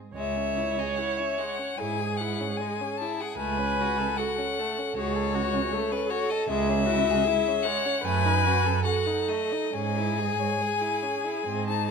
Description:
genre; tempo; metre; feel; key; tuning
classical, slow romantic movement for string quartet; 75 BPM; 4/4; uneven beats, rubato; C# minor; A4 = 440 Hz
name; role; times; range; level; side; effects
rich violin; melody; 0.2-11.9 s; B4 to A5; -28 LUFS; left 11 dB; none
clear violin; second line; 0.2-11.9 s; G#3 to C#5; -34 LUFS; left 3 dB; none
warm viola; accompaniment; 0.2-11.9 s; F#4 to C#5; -30 LUFS; right 4 dB; none
rich cello; bass; 0.2-11.9 s; C#2 to G#2; -30 LUFS; right 5 dB; none
room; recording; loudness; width
moderate concert hall reverb, RT60 1.9 s; close, detailed microphones; -24 LUFS; side -5 dB against mid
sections
0.2-11.9 A section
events
none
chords
0.2 C#m; 3.4 F#m/C#; 6.5 C#m; 8.1 D#dim/F#; 9.8 C#m/G#

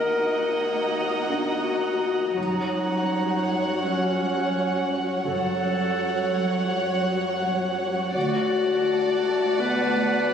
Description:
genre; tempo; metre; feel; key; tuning
cinematic; 83 BPM; 4/4; straight; unclear; A4 = 440 Hz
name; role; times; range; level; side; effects
warm chamber violin section; melody; 0.0-10.3 s; Gb5; -32 LUFS; left 2 dB; none
clear clarinet; second line; 0.0-10.3 s; Db4 to Cb5; -26 LUFS; left 3 dB; none
warm chamber violin section; second line; 0.0-10.3 s; Db5 to Eb5; -31 LUFS; right 2 dB; none
dark chamber viola section; accompaniment; 0.0-10.3 s; Gb3 to Bb3; -32 LUFS; right 2 dB; none
flickering grainy texture; sustained chords; 0.0-10.3 s; Gb4 to Eb6; -29 LUFS; equal; built-in reverb
dark studio cello section; bass; 0.0-10.3 s; D2 to Gb2; -32 LUFS; right 3 dB; none
dark studio double bass section; bass; 0.0-8.8 s; Gb1 to Eb2; -36 LUFS; right 4 dB; none
felt-muted upright piano; texture; 0.0-10.3 s; Cb4 to Bb5; -34 LUFS; left 2 dB; none
room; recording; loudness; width
moderate scoring stage reverb, RT60 2.0 s; recorded on a phone in the room, club reverb; -22 LUFS; side -7 dB against mid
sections
0.0-10.3 A section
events
none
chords
0.0 Ebm; 2.4 Gbm; 8.2 D

